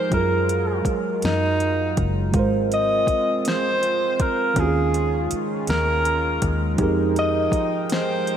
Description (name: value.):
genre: slow six-eight R&B.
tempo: 54 BPM (dotted quarters).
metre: 6/8.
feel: straight.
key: Ab mixolydian.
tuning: A4 = 440 Hz.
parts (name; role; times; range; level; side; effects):
warm alto saxophone; melody; 0.0-8.4 s; Eb4 to Eb5; -23 LUFS; equal; ping-pong delay.
mellow tine electric piano; accompaniment; 0.0-8.4 s; Eb3 to C5; -25 LUFS; right 4 dB; wide subtle chorus.
chorused pulse-width pad; sustained chords; 0.0-8.4 s; Eb3 to G5; -29 LUFS; left 1 dB; none.
vintage muted fingered electric bass; bass; 0.1-7.6 s; Gb1 to Gb2; -25 LUFS; left 1 dB; none.
smooth R&B drum kit; drums; 0.1-8.4 s; hi-hat, kick drum, snare drum; -26 LUFS; left 1 dB; overdrive.
room: moderate lush hall reverb, RT60 2.4 s.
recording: dreamy mix soaked in reverb.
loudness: -19 LUFS.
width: side -9 dB against mid.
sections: 0.0-8.4 A section.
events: none.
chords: 0.1 Gbmaj9; 2.3 Ab69; 4.6 Eb9sus4; 6.8 Fm11.